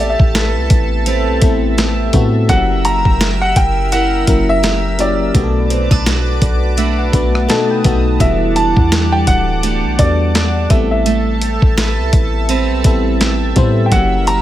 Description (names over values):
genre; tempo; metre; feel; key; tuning
contemporary R&B; 84 BPM; 4/4; swing 58% on 16ths; unclear; A4 = 440 Hz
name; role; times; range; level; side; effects
warm grand piano; melody; 0.0-14.4 s; D5 to A#5; -18 LUFS; equal; tape echo
FM electric piano; accompaniment; 0.0-14.4 s; F#3 to A5; -20 LUFS; left 3 dB; chorus
chorused pulse-width pad; sustained chords; 0.0-14.4 s; G3 to E6; -23 LUFS; equal; none
picked steel-string acoustic guitar; arpeggios; 0.0-14.4 s; B2 to B4; -21 LUFS; right 6 dB; tape echo
warm 808-style bass; bass; 0.0-14.4 s; D1 to A2; -17 LUFS; equal; none
dusty soul sampler-style drum kit; drums; 0.2-14.4 s; hi-hat, kick drum, rim click, snare drum; -15 LUFS; equal; none
room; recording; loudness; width
little or no reverb; none; -11 LUFS; side -13 dB against mid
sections
0.0-14.4 A section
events
FM electric piano fill 6.1-8.2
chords
0.0 Am9; 2.5 F#7b9; 5.3 Bm7; 7.5 B7; 8.2 Em11; 10.7 Am9; 13.9 F#7b9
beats
0.35 1.06 1.77 | 2.49 3.20 3.92 4.63 | 5.35 6.06 6.78 7.49 | 8.20 8.92 9.63 10.35 | 11.06 11.78 12.49 13.20 | 13.92